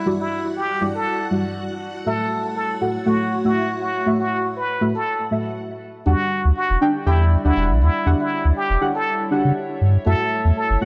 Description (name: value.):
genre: house.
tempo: 120 BPM.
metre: 4/4.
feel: swing 54% on 16ths.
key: E dorian.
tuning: A4 = 441 Hz.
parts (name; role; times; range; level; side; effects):
trumpet with plunger mute; melody; 0.0-10.8 s; E4 to B4; -26 LUFS; equal; tape echo.
warbly tape-like pad; sustained chords; 0.0-10.8 s; G3 to F#5; -33 LUFS; equal; chorus, built-in reverb, phaser.
deep mellow chord stab; stabs; 0.0-10.8 s; G3 to G5; -25 LUFS; equal; chorus, phaser, tape echo.
string machine, violins; texture; 0.0-5.6 s; F#4 to F#5; -38 LUFS; equal; ensemble chorus.
warm sub bass; bass; 6.1-10.8 s; E1 to C#3; -18 LUFS; equal; none.
room: light reverb, studio reverb.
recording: none.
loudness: -20 LUFS.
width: mono.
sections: 0.0-6.1 A section; 6.1-10.8 B section.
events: filter sweep on ambient pad 0.0-6.1; break 5.6-6.1; drop 6.1-10.8.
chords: 0.0 Em9; 2.1 F#m7; 6.1 Em9; 10.1 F#m7.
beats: | 0.06 0.56 1.06 1.56 | 2.06 2.56 3.06 3.56 | 4.06 4.56 5.06 5.56 | 6.06 6.56 7.06 7.56 | 8.06 8.56 9.06 9.56 | 10.06 10.56.